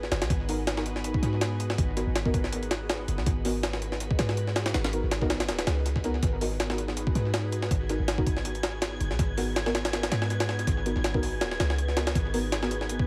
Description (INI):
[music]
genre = drum and bass, jungle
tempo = 162 BPM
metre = 4/4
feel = swing 54% on 16ths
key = G# minor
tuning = A4 = 440 Hz
[part]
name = warm 808-style bass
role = bass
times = 0.0-13.1 s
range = D#1 to G#2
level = -33 LUFS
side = equal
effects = none
[part]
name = jungle sampler-style drum kit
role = drums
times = 0.0-13.1 s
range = hi-hat, kick drum, snare drum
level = -31 LUFS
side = equal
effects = tape echo
[part]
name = deep mellow chord stab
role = stabs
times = 0.5-12.7 s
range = B3 to A#4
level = -36 LUFS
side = equal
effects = chorus, dub echo
[part]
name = wind-like tuned noise texture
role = texture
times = 7.2-13.1 s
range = G#6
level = -42 LUFS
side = equal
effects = built-in reverb
[sound]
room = light reverb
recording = echo-heavy mix, vinyl crackle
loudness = -28 LUFS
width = mono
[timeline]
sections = 0.0-13.1 A section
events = none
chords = 0.0 G#m7